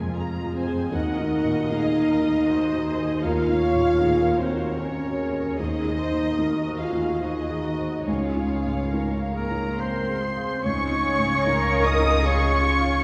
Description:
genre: cinematic, emotional film score for orchestra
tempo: 69-79 BPM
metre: 3/4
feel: rubato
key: Db major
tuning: A4 = 440 Hz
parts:
  - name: muted studio violin section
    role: melody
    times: 0.0-13.0 s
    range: C5 to Eb6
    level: -33 LUFS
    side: equal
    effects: none
  - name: felt-muted upright piano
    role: accompaniment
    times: 0.0-13.0 s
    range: Db2 to F5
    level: -32 LUFS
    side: equal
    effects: none
  - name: muted studio viola section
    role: accompaniment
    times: 0.0-13.0 s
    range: Db4 to Db5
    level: -36 LUFS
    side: equal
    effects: none
  - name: muted studio cello section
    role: bass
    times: 0.0-13.0 s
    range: Db2 to Bb4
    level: -32 LUFS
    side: equal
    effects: none
  - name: dark French horn section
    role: sustained chords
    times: 0.5-13.0 s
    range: Bb3 to F4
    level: -28 LUFS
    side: equal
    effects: none
  - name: muted studio violin section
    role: second line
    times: 0.6-13.0 s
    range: F4 to F5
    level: -36 LUFS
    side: equal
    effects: none
  - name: dark clarinet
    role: second line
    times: 9.4-13.0 s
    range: Bb4 to Eb5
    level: -33 LUFS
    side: equal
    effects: none
  - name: warm oboe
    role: second line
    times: 9.4-13.0 s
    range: Bb4 to Eb5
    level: -30 LUFS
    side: equal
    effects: none
  - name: muted studio double bass section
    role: bass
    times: 10.6-13.0 s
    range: Db2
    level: -27 LUFS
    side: equal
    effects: none
room: wet scoring stage reverb, RT60 2.0 s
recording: heard from further back in the room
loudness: -23 LUFS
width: mono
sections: 0.0-10.7 A section; 10.7-13.0 A section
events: none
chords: 0.0 Fm; 0.9 Ebm; 5.6 Ab/Eb; 8.1 Dbadd9

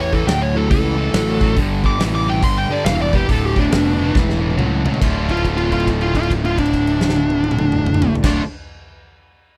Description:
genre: blues rock power trio and southern rock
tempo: 140 BPM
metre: 4/4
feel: swing 63% on 8ths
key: D harmonic minor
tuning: A4 = 436 Hz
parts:
  - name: fuzz lead guitar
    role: melody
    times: 0.0-8.4 s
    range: D4 to D6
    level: -22 LUFS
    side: equal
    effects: distortion, slapback echo
  - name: cranked stack guitar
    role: riff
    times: 0.0-8.4 s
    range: D2 to F4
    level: -23 LUFS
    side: equal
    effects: overdrive
  - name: fuzz fingered electric bass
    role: bass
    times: 0.0-8.4 s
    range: D1 to E2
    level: -23 LUFS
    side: equal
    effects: overdrive
  - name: huge arena drum kit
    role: drums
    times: 0.1-8.3 s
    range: crash cymbal, hi-hat, kick drum, snare drum, toms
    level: -23 LUFS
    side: equal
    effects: none
room: light reverb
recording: dry, close 1970s-style studio recording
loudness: -17 LUFS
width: mono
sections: 0.0-5.0 A section; 5.0-8.4 B section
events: drum fill 4.1-5.0; held note 5.0-8.2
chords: 0.0 A; 1.6 G5; 3.3 Dm; 4.1 A; 5.0 Dm

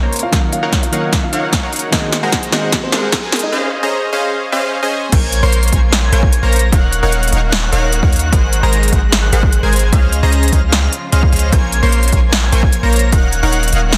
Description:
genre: future bass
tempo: 150 BPM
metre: 4/4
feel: half-time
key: Bb minor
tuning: A4 = 440 Hz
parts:
  - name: soft round pluck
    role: accompaniment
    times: 0.0-3.5 s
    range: Db3 to Gb4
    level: -28 LUFS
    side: equal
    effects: lush chorus, sidechain pumping, delay
  - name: rich symphonic string section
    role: sustained chords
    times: 0.0-14.0 s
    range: C3 to C5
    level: -31 LUFS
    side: equal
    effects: sidechain pumping
  - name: supersaw stab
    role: riff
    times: 0.0-14.0 s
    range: Ab3 to C6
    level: -21 LUFS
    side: equal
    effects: sidechain pumping, low-pass filter, delay
  - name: riser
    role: sound effects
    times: 1.9-3.5 s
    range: none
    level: -34 LUFS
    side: equal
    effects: none
  - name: big-room dance drum kit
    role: drums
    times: 0.1-14.0 s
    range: crash cymbal, hi-hat, snare drum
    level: -20 LUFS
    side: equal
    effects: none
  - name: dark baby grand piano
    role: melody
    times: 0.2-3.5 s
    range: C4 to Gb5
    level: -26 LUFS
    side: equal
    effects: sidechain pumping, delay
  - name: electronic kick drum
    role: drums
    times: 0.3-13.2 s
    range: none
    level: -17 LUFS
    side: equal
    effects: none
  - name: airy dreamy lead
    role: arpeggios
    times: 5.1-14.0 s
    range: F6 to C7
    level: -27 LUFS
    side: equal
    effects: chorus, phaser, sidechain pumping, delay
  - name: warm 808-style bass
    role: bass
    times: 5.1-14.0 s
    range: Eb1 to Eb2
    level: -17 LUFS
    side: equal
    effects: sidechain pumping
room: light reverb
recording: dense, heavily limited modern master, high-pass filter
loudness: -14 LUFS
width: mono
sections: 0.0-5.1 A section; 5.1-14.0 B section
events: build-up 0.0-5.1; drum fill 0.0-3.5; drop 5.1-14.0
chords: 0.3 Ebm7; 1.9 Ab7; 3.5 Dbmaj7; 5.1 Bbm7; 6.7 Ebm7; 8.3 Ab7; 9.9 Dbmaj7; 11.5 Bbm7; 13.1 Ebm7

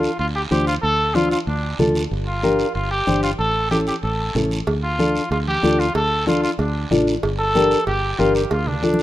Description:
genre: latin, cumbia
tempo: 188 BPM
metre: 4/4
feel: straight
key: D minor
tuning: A4 = 440 Hz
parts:
  - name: clear trumpet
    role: melody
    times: 0.0-9.0 s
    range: D4 to A4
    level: -22 LUFS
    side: equal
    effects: none
  - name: nylon-string guitar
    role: accompaniment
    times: 0.0-9.0 s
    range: C#4 to C5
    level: -21 LUFS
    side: left 2 dB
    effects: none
  - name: fingered electric bass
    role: bass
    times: 0.0-9.0 s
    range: G1 to D2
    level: -24 LUFS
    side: equal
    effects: none
  - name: guiro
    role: percussion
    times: 0.0-9.0 s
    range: none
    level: -33 LUFS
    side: right 3 dB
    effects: none
  - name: congas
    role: percussion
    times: 0.5-9.0 s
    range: none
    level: -27 LUFS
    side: right 1 dB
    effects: none
  - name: cowbell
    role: percussion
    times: 4.7-8.7 s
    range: none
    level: -27 LUFS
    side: right 2 dB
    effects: none
room: light reverb, studio reverb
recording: rough home demo mix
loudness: -17 LUFS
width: side -14 dB against mid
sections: 0.0-9.0 A section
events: drum fill 8.8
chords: 0.0 Dm; 2.1 Gm; 3.4 A; 4.7 Dm; 7.2 Gm; 8.5 Dm

